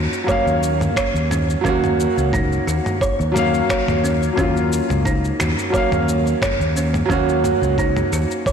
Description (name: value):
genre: sunset chillout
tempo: 88 BPM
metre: 4/4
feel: swing 53% on 16ths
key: Eb minor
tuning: A4 = 440 Hz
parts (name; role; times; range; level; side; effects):
- warm concert grand piano; accompaniment; 0.0-8.5 s; Gb3 to F5; -20 LUFS; moving between left 4 dB and right 6 dB; auto-pan, ping-pong delay
- kalimba; arpeggios; 0.0-8.5 s; Db4 to Db5; -24 LUFS; right 3 dB; ping-pong delay
- mellow fretless electric bass; bass; 0.0-8.2 s; Db2 to Eb2; -21 LUFS; left 1 dB; none
- dusty soul sampler-style drum kit; drums; 0.1-8.5 s; finger snaps, shaker, toms; -26 LUFS; equal; overdrive, soft clipping on snare
- electronic kick drum; drums; 0.3-8.5 s; none; -24 LUFS; left 1 dB; overdrive
room: moderate lush hall reverb, RT60 2.4 s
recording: blown-out, overdriven recording, overdrive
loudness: -16 LUFS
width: side -7 dB against mid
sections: 0.0-8.5 A section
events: none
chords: 0.0 Ebm7